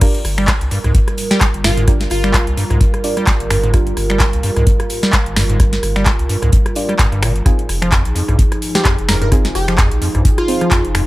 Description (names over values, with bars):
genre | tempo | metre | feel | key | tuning
acid house | 129 BPM | 4/4 | swing 56% on 16ths | G phrygian | A4 = 440 Hz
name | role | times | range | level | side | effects
dark analog pad | sustained chords | 0.3-11.1 s | F3 to Bb4 | -23 LUFS | right 2 dB | chorus, phaser, vintage 12-bit sampler grit, sidechain pumping
acid bass, square | riff | 0.0-11.0 s | F2 to G3 | -20 LUFS | equal | overdrive, lush chorus, cassette tape, tape echo
deep mellow chord stab | stabs | 0.0-3.9, 6.8-10.6 s | C4 to D5 | -25 LUFS | right 1 dB | chorus, tape echo
booming analog drum machine | drums | 0.0-11.1 s | crash cymbal, finger snaps, handclaps, hi-hat, rim click, snare drum | -20 LUFS | equal | none
electronic kick drum | drums | 0.0-10.8 s | none | -14 LUFS | equal | none
soft brush drum kit | drums | 0.0-11.1 s | hi-hat, snare drum | -32 LUFS | right 2 dB | none
warm sub bass | bass | 0.2-11.1 s | F1 to C2 | -19 LUFS | equal | sidechain pumping
plucky unison lead | melody | 1.3-2.5, 8.8-10.8 s | F4 to Bb4 | -22 LUFS | right 1 dB | tape echo
room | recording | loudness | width
digital ambience | none | -12 LUFS | side -18 dB against mid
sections
0.0-11.1 A section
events
drop 0.0-11.1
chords
0.0 Gm7; 7.5 Fm7